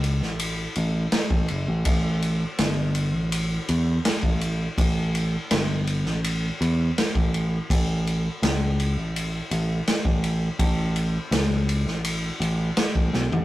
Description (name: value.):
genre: psychedelic rock.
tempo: 82 BPM.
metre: 4/4.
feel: straight.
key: A mixolydian.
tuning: A4 = 440 Hz.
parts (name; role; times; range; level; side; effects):
picked electric bass; bass; 0.0-13.4 s; F#1 to E2; -24 LUFS; equal; none.
vintage drum kit; drums; 0.0-13.4 s; kick drum, ride cymbal, snare drum, toms; -25 LUFS; equal; none.
room: light reverb.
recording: rough rehearsal-room recording, tube saturation.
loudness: -22 LUFS.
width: side -16 dB against mid.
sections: 0.0-13.4 A section.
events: drum fill 13.1-13.4.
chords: none.